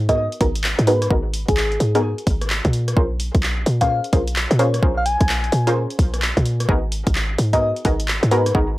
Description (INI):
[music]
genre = UK garage, two-step garage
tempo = 129 BPM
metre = 4/4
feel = swing 64% on 16ths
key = G# dorian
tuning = A4 = 444 Hz
[part]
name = short 808-style bass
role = bass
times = 0.0-8.8 s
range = G#1 to A#2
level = -20 LUFS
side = equal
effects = none
[part]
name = soft struck synth lead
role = melody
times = 0.1-8.5 s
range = G#4 to G#5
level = -22 LUFS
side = left 1 dB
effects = chorus
[part]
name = punchy chord stab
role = stabs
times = 0.1-8.6 s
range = B3 to B#4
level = -23 LUFS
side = equal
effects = chorus, analog delay
[part]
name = electronic kick drum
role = drums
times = 0.1-8.7 s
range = none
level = -20 LUFS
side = equal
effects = none
[part]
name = punchy analog drum machine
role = drums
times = 0.1-8.5 s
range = handclaps, hi-hat, rim click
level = -25 LUFS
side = equal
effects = overdrive
[sound]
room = little or no reverb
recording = dry, gritty hardware recording, transformer saturation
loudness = -17 LUFS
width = side -18 dB against mid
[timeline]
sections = 0.0-8.8 A section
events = filter sweep on synth stab 0.0-8.8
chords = 0.0 G#m9; 2.7 A#m9; 6.7 G#m9